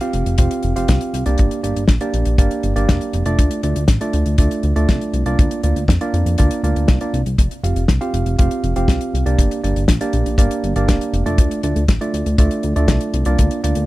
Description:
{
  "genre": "italo disco",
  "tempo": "120 BPM",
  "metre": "4/4",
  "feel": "straight",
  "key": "D minor",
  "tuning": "A4 = 438 Hz",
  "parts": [
    { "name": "tine electric piano", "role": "stabs", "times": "0.0-13.8 s", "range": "A3 to F5", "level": "-21 LUFS", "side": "right 2 dB", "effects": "overdrive, tape echo" },
    { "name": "damped 70s drum kit", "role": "drums", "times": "0.0-13.9 s", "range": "hi-hat, snare drum", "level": "-23 LUFS", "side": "left 2 dB", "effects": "none" },
    { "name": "chorused synth bass", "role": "bass", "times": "0.1-13.9 s", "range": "F1 to F2", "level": "-19 LUFS", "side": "equal", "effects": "tube saturation" },
    { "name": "kick drum", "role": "drums", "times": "0.4-13.5 s", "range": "none", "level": "-15 LUFS", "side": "equal", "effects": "none" }
  ],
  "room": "little or no reverb",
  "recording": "dry, close 1970s-style studio recording",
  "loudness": "-15 LUFS",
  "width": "side -18 dB against mid",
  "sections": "0.0-13.9 A section",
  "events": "none",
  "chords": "0.0 Fsus2; 1.4 Gm; 3.4 Dm; 5.4 Bb/D; 7.4 Fsus2; 9.4 Gm; 11.4 Dm"
}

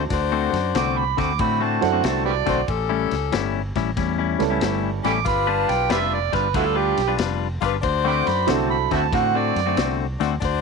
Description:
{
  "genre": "electric blues shuffle",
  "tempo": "93 BPM",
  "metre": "4/4",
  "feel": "swing 67% on 8ths",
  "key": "D mixolydian",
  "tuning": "A4 = 440 Hz",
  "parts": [
    { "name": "warm upright piano", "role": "accompaniment", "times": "0.0-9.5 s", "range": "F#3 to A4", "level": "-26 LUFS", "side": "right 16 dB", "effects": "none" },
    { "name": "clean electric guitar", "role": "riff", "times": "0.0-10.3 s", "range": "A2 to B4", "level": "-25 LUFS", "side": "left 15 dB", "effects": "none" },
    { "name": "bright saxophone section", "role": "stabs", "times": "0.0-10.6 s", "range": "C#4 to C5", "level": "-25 LUFS", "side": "left 11 dB", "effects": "none" },
    { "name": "fingered electric bass", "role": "bass", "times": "0.0-10.6 s", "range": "F1 to A2", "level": "-26 LUFS", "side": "right 1 dB", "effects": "none" },
    { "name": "vintage drum kit", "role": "drums", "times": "0.1-10.6 s", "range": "kick drum, ride cymbal, snare drum", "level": "-30 LUFS", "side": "left 2 dB", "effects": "none" },
    { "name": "overdriven harmonica", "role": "second line", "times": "0.8-10.0 s", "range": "E4 to D6", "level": "-23 LUFS", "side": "right 15 dB", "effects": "none" }
  ],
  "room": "light reverb, small room ambience",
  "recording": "1960s-style stereo with parts hard left and right",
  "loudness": "-19 LUFS",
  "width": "side -4 dB against mid",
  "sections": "0.0-10.6 A section",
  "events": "harmonica solo 0.0-10.6",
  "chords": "0.0 D7; 2.7 A7; 5.3 G7; 7.8 D7"
}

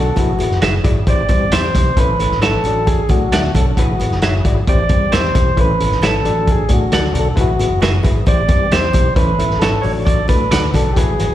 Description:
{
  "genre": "uptempo 1960s-style soul",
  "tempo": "134 BPM",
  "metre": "4/4",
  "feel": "straight",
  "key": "unclear",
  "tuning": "A4 = 440 Hz",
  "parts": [
    { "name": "tonewheel organ", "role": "melody", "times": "0.0-11.3 s", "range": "F#4 to D5", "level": "-19 LUFS", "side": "equal", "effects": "stopped rotary speaker, slapback echo" },
    { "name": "overdriven reed electric piano", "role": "accompaniment", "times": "0.0-11.3 s", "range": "A2 to E5", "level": "-23 LUFS", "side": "left 4 dB", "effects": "fast tremolo, slapback echo" },
    { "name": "percussive tonewheel organ", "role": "sustained chords", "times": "0.0-11.3 s", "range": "E3 to A4", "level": "-28 LUFS", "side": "right 1 dB", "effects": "slow rotary speaker, chorus vibrato" },
    { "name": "vintage muted fingered electric bass", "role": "bass", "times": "0.0-11.3 s", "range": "F#1 to A2", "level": "-19 LUFS", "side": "equal", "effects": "none" },
    { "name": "vintage drum kit", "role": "drums", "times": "0.2-11.3 s", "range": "hi-hat, kick drum, snare drum", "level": "-17 LUFS", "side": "equal", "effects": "none" },
    { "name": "congas", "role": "percussion", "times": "0.2-11.3 s", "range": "none", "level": "-28 LUFS", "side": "equal", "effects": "none" },
    { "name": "semi-hollow electric guitar", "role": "stabs", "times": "0.6-10.6 s", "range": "F#4 to F#5", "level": "-22 LUFS", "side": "right 5 dB", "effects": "lush chorus, slapback echo" }
  ],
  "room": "light reverb",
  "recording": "live gig heard through the venue's PA, recital hall reverb",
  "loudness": "-12 LUFS",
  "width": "side -12 dB against mid",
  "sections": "0.0-11.3 A section",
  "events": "none",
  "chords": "0.2 Eadd9; 1.1 C/A; 2.0 A; 2.6 D/A; 3.8 Eadd9; 4.7 C/A; 5.6 A; 6.2 D/A; 7.4 Eadd9; 8.3 C/A; 9.2 A; 9.8 D/A"
}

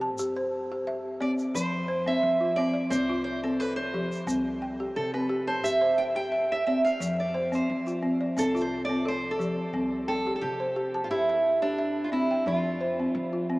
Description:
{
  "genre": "west african traditional, West African string and xylophone music",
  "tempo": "88 BPM",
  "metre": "4/4",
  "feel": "straight",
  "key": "C major",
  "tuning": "A4 = 440 Hz",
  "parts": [
    { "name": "balafon", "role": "arpeggios", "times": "0.0-13.6 s", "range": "F3 to A5", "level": "-28 LUFS", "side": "equal", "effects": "none" },
    { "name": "upright bass", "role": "bass", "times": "0.0-13.6 s", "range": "C2 to F3", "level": "-41 LUFS", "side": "equal", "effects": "none" },
    { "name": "egg shaker", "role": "percussion", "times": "0.2-9.5 s", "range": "none", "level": "-41 LUFS", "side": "right 1 dB", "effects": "none" },
    { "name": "fingerpicked steel-string acoustic guitar", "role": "melody", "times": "1.2-13.5 s", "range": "D4 to G5", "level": "-28 LUFS", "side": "right 1 dB", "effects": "none" }
  ],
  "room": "wet huge ambient reverb, RT60 8.2 s",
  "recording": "in a vast, echoing space, small speaker sound",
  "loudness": "-25 LUFS",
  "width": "side -20 dB against mid",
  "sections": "0.0-9.7 A section; 9.7-13.6 B section",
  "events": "steel-string acoustic guitar solo 0.0-9.7",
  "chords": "0.0 C; 1.5 F; 4.3 C; 7.0 F; 9.7 C; 12.5 F5"
}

